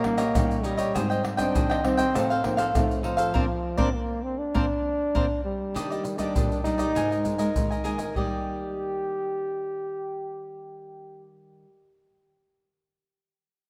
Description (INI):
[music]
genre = samba and choro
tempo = 100 BPM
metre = 4/4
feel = straight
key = Eb major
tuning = A4 = 440 Hz
[part]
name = warm trombone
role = melody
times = 0.0-11.3 s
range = F3 to G4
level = -31 LUFS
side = equal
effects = none
[part]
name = cavaquinho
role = accompaniment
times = 0.0-11.7 s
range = D4 to Ab5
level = -32 LUFS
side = equal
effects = none
[part]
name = nylon-string guitar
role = accompaniment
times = 0.0-11.7 s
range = Ab2 to Eb4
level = -33 LUFS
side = equal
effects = none
[part]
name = surdo, pandeiro, tamborim and maracas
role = percussion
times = 0.0-8.3 s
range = none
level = -31 LUFS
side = equal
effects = none
[sound]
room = moderate lush hall reverb, RT60 2.6 s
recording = rough home demo mix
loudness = -26 LUFS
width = mono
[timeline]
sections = 0.0-5.8 A section; 5.8-8.2 B section; 8.2-10.6 C section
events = band accent 3.4-5.8; drum fill 5.2-5.8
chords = 0.0 Eb7/Bb; 0.9 Abmaj7; 2.2 F7/A; 3.4 Bbadd9; 5.8 Ebmaj7; 7.0 Absus2; 8.2 Ebmaj7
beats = 0.35 | 0.95 1.55 2.15 2.75 | 3.35 3.95 4.55 5.15 | 5.75 6.35 6.96 7.56 | 8.16 8.76 9.36 9.96